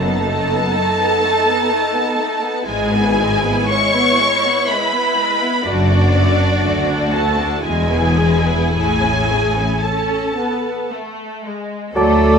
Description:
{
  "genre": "classical, slow romantic movement for symphony orchestra",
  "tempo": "54-64 BPM",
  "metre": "3/4",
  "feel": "rubato",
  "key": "A major",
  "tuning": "A4 = 440 Hz",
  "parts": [
    { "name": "dark symphonic violin section", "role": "melody", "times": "0.0-12.4 s", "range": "A4 to C#6", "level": "-19 LUFS", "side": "equal", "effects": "none" },
    { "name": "rich symphonic violin section", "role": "second line", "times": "0.0-12.4 s", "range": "G#3 to A4", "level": "-22 LUFS", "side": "left 1 dB", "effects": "none" },
    { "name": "warm studio viola section", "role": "accompaniment", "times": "0.0-10.9 s", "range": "D4 to C#5", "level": "-21 LUFS", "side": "equal", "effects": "none" },
    { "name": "rich symphonic cello section", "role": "bass", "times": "0.0-12.4 s", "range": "D2 to A3", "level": "-21 LUFS", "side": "equal", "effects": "none" },
    { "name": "warm symphonic double bass section", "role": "bass", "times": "0.0-12.4 s", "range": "E1 to D2", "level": "-20 LUFS", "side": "equal", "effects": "none" },
    { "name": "warm trombone section", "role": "sustained chords", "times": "11.9-12.4 s", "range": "A2 to A3", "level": "-23 LUFS", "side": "right 4 dB", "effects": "none" },
    { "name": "dark clarinet", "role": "second line", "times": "12.0-12.3 s", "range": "A4", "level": "-22 LUFS", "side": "left 8 dB", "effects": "none" },
    { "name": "mellow hollow silver concert flute", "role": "second line", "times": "12.0-12.4 s", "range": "A5", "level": "-20 LUFS", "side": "equal", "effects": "none" },
    { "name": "warm oboe", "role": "second line", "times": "12.0-12.3 s", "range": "D5", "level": "-22 LUFS", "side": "right 1 dB", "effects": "none" },
    { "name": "mellow bassoon", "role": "accompaniment", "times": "12.0-12.3 s", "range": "F#3", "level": "-19 LUFS", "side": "right 6 dB", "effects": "none" },
    { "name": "mellow French horn section", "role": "sustained chords", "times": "12.0-12.4 s", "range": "F#4 to A4", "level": "-19 LUFS", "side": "left 2 dB", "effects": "none" },
    { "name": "bright trumpet", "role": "stabs", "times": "12.0-12.4 s", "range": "D5", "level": "-20 LUFS", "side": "equal", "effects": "none" }
  ],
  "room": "wet stone room reverb, RT60 1.1 s",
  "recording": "minimal, uncompressed stereo recording",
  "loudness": "-14 LUFS",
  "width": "side -6 dB against mid",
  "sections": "0.0-12.0 A section",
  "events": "none",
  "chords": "0.0 B7/F#; 2.7 E/G#; 5.7 D/F#; 6.6 D; 7.6 E; 8.7 A"
}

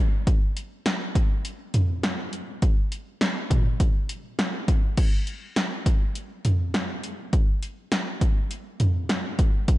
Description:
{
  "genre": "pop",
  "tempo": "102 BPM",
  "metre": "4/4",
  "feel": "straight",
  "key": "none",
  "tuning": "none",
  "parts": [
    { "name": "punchy analog drum machine", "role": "drums", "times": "0.3-9.8 s", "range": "crash cymbal, hi-hat, kick drum, snare drum, toms", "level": "-22 LUFS", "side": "equal", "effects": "none" }
  ],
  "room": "light reverb",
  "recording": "nothing above 10.7 kHz",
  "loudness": "-22 LUFS",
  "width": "side -17 dB against mid",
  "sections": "0.0-5.0 A section; 5.0-9.8 B section",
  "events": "none",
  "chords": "none"
}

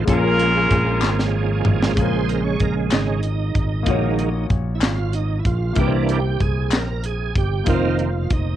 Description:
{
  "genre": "slow gospel",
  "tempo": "63 BPM (dotted quarters)",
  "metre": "6/8",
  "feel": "straight",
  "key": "Bb minor",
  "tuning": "A4 = 439 Hz",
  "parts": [
    { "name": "clear saxophone section", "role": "melody", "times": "0.0-1.3 s", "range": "Db4 to Bb4", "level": "-20 LUFS", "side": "left 1 dB", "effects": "cassette tape" },
    { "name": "clear concert grand piano", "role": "accompaniment", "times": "0.0-8.6 s", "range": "Bb2 to Db5", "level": "-28 LUFS", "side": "left 10 dB", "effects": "cassette tape, plate reverb" },
    { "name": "bright tonewheel organ", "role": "sustained chords", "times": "0.0-8.6 s", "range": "Db3 to Db5", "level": "-24 LUFS", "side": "right 8 dB", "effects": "slow rotary speaker, chorus vibrato, cassette tape" },
    { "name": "fingered electric bass", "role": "bass", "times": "0.0-8.6 s", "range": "F1 to C2", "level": "-22 LUFS", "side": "equal", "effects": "none" },
    { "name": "crisp fusion drum kit", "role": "drums", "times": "0.1-8.5 s", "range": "hi-hat, kick drum, snare drum, toms", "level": "-22 LUFS", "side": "equal", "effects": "cassette tape" },
    { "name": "group handclap", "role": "percussion", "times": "1.0-7.0 s", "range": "none", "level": "-27 LUFS", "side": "left 10 dB", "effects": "none" }
  ],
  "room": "light reverb",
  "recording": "home recording on cassette",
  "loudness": "-17 LUFS",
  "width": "side -12 dB against mid",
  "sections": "0.0-2.0 A section; 2.0-8.6 B section",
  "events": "drum fill 1.0-2.0; tonewheel organ solo 2.0-8.6",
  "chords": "0.1 Bbm7; 3.9 Gb6/Bb; 5.8 C7; 7.7 F7sus4"
}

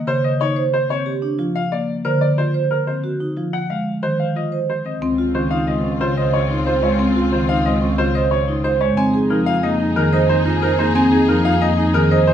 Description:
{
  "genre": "classical, minimalist pattern music",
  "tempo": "182 BPM",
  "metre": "6/4",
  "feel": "straight",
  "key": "Db major from 5.0 s",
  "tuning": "A4 = 440 Hz",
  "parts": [
    { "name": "bright baby grand piano", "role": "melody", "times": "0.1-12.3 s", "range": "Bb4 to Ab5", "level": "-23 LUFS", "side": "left 5 dB", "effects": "none" },
    { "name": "marimba with medium mallets", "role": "accompaniment", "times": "0.1-12.2 s", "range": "Db3 to C4", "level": "-20 LUFS", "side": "left 1 dB", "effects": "none" },
    { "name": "vibraphone with medium mallets", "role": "arpeggios", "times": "0.1-12.3 s", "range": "C4 to C5", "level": "-22 LUFS", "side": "right 5 dB", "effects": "none" },
    { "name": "warm clarinet", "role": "second line", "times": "5.0-12.3 s", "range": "Eb4 to F4", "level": "-28 LUFS", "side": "right 2 dB", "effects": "none" },
    { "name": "rich symphonic string section", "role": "sustained chords", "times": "5.0-12.3 s", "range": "C4 to Ab4", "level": "-26 LUFS", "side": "left 3 dB", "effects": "none" },
    { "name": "rich studio double bass section", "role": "bass", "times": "5.0-12.3 s", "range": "Db2 to F2", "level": "-24 LUFS", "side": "right 1 dB", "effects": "none" }
  ],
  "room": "moderate recital hall reverb, RT60 1.5 s",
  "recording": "close, detailed microphones",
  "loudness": "-16 LUFS",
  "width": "side -9 dB against mid",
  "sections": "0.0-5.0 A section; 5.0-12.3 B section",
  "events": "none",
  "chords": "0.0 Eb7(no3); 1.1 Gm7; 3.0 Ab7; 5.0 Dbmaj7; 9.0 Fm7"
}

